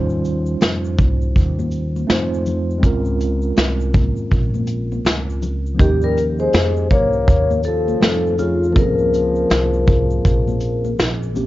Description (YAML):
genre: hip hop, jazz-hop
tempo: 81 BPM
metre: 4/4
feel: swing 61% on 16ths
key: Bb dorian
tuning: A4 = 440 Hz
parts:
  - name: mellow tine electric piano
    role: accompaniment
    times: 0.0-11.5 s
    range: F3 to C5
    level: -24 LUFS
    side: right 1 dB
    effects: medium stereo tremolo, plate reverb
  - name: upright bass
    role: bass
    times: 0.0-11.5 s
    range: Bb1 to F2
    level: -21 LUFS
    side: equal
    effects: none
  - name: egg shaker and congas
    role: percussion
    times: 0.1-11.5 s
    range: none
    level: -30 LUFS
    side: left 4 dB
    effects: none
  - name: vintage brush drum kit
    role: drums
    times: 0.2-11.5 s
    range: hi-hat, kick drum, shaker, snare drum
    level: -18 LUFS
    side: equal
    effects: none
  - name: vibraphone with soft mallets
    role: melody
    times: 5.8-10.9 s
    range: F4 to Db5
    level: -19 LUFS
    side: left 2 dB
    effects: cassette tape, analog delay, plate reverb
  - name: mellow trombone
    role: second line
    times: 5.8-10.9 s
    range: Db3 to Bb3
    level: -25 LUFS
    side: left 3 dB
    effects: plate reverb
room: light reverb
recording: home recording on cassette, nothing above 7.5 kHz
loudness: -15 LUFS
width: side -16 dB against mid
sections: 0.0-11.5 A section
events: none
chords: 0.0 Eb13; 2.1 F7; 2.8 Bbm9; 5.8 Eb13; 8.0 F7; 8.8 Bbm9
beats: 0.61 1.35 2.09 | 2.83 3.58 4.32 5.06 | 5.80 6.54 7.28 8.02 | 8.76 9.50 10.24 10.98